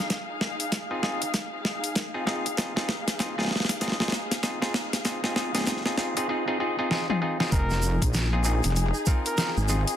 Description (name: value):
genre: glitch hop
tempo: 97 BPM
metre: 4/4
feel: swing 61% on 16ths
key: F minor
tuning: A4 = 438 Hz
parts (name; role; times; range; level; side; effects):
- dubstep drum kit; drums; 0.0-10.0 s; hi-hat, snare drum, toms; -28 LUFS; equal; overdrive
- muted studio string section; texture; 0.0-10.0 s; Eb4 to F5; -34 LUFS; left 2 dB; sidechain pumping
- electronic kick drum; drums; 0.1-9.2 s; none; -26 LUFS; equal; overdrive, high-pass filter on kick
- overdriven clav; stabs; 0.9-10.0 s; C4 to Bb4; -30 LUFS; equal; sidechain pumping, tape echo
- mellow trumpet; melody; 7.5-9.5 s; Bb4; -34 LUFS; equal; tape echo
- wobble bass; bass; 7.5-9.8 s; F1 to Bb1; -24 LUFS; equal; chorus
- tube shaker; percussion; 7.5-10.0 s; none; -35 LUFS; right 5 dB; none
room: moderate plate reverb, RT60 1.8 s, studio reverb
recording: dense, heavily limited modern master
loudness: -24 LUFS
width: side -10 dB against mid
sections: 0.0-7.5 A section; 7.5-10.0 B section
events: build-up 0.0-7.5; drum fill 0.0-6.3, 6.9-7.5; drop 7.5-10.0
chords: 0.0 Fm7